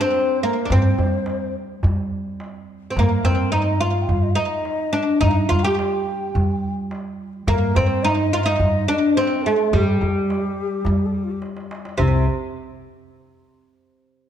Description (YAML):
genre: Arabic maqam ensemble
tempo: 106 BPM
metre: 4/4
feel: straight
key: G maqam bayati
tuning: A4 = 440 Hz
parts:
  - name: oud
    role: melody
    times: 0.0-12.2 s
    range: C3 to G4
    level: -21 LUFS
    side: right 1 dB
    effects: slapback echo
  - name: breathy mellow ney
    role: second line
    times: 0.0-12.2 s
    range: C4 to G5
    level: -26 LUFS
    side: left 5 dB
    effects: none
  - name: darbuka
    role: percussion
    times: 0.1-12.3 s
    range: none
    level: -24 LUFS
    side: equal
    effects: none
  - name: upright bass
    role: bass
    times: 0.7-12.3 s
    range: C2 to G3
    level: -22 LUFS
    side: equal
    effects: none
room: light reverb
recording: dark, warm production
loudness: -18 LUFS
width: side -9 dB against mid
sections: 0.0-12.0 A section; 12.0-14.2 B section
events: drum fill 11.4-12.0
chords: none